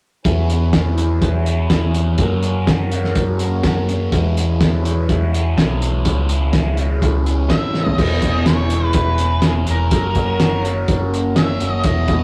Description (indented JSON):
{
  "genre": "psychedelic rock",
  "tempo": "124 BPM",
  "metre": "4/4",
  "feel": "straight",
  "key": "E lydian",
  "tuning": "A4 = 442 Hz",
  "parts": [
    { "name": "hand-pumped harmonium", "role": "sustained chords", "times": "0.2-12.2 s", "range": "B3 to A#5", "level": "-31 LUFS", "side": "equal", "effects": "none" },
    { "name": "crunchy overdriven guitar", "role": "riff", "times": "0.2-12.2 s", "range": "C#3 to G#4", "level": "-26 LUFS", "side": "equal", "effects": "phaser" },
    { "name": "picked electric bass with an envelope filter", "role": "bass", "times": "0.3-12.2 s", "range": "E1 to F#2", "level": "-21 LUFS", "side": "equal", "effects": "none" },
    { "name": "pedal harmonium", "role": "drone", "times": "0.3-8.0 s", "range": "E2 to B2", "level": "-36 LUFS", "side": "equal", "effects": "none" },
    { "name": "cloth-damped thuddy drum kit", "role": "drums", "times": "0.3-12.2 s", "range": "crash cymbal, hi-hat, kick drum, snare drum, toms", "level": "-21 LUFS", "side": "equal", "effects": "none" },
    { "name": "octave-fuzz lead guitar", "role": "melody", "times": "7.5-12.2 s", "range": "G#4 to E5", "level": "-26 LUFS", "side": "equal", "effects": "distortion, tape echo" }
  ],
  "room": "wet small room reverb, RT60 0.5 s",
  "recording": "rough rehearsal-room recording, tube saturation",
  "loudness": "-17 LUFS",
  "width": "mono",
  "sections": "0.3-8.0 A section; 8.0-12.2 B section",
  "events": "drum fill 7.7",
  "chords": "0.3 E6; 2.2 F#; 4.1 E6; 6.1 C#m7; 8.0 E6; 9.9 F#"
}